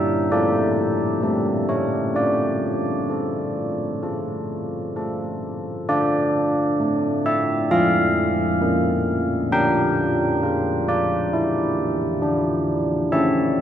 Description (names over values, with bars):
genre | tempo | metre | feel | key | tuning
classical, tune for church bells | 66 BPM | 4/4 | straight | D minor | A4 = 440 Hz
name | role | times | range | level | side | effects
carillon bells | solo | 0.0-13.6 s | F3 to G5 | -19 LUFS | equal | none
room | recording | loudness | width
wet cathedral reverb, RT60 6.1 s | dark, warm production | -19 LUFS | side -10 dB against mid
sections
0.0-5.9 A section; 5.9-13.6 B section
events
none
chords
0.3 Dm/A; 1.2 A7; 2.1 Dm; 9.5 Em7b5/D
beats
0.31 1.22 | 2.15 3.09 4.03 4.96 | 5.90 6.81 7.72 8.62 | 9.53 10.44 11.34 12.23 | 13.12